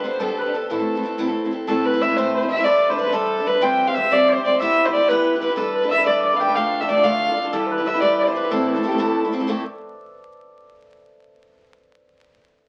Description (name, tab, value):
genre	celtic folk, Celtic jig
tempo	123 BPM (dotted quarters)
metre	6/8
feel	straight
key	A minor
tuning	A4 = 440 Hz
part	dark fiddle	melody	0.0-9.2 s	G4 to G5	-22 LUFS	equal	none
part	cimbalom	second line	0.0-11.1 s	G4 to G5	-27 LUFS	equal	none
part	picked steel-string acoustic guitar	accompaniment	0.0-9.6 s	A2 to C5	-26 LUFS	equal	none
room	moderate studio reverb, RT60 0.8 s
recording	very old 78 rpm record, vinyl crackle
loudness	-20 LUFS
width	mono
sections	0.0-1.7 A section; 1.7-9.5 B section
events	none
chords	0.0 Gadd9; 0.7 Am; 1.7 Amadd9; 2.6 Gadd9; 3.6 Fsus2; 4.6 Em; 5.6 Gadd9; 6.5 Dm; 7.5 Em; 8.5 Am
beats	0.20 | 0.69 1.18 | 1.67 2.16 | 2.65 3.14 | 3.62 4.11 | 4.60 5.09 | 5.57 6.06 | 6.55 7.04 | 7.52 8.01 | 8.50 8.98 | 9.47 9.96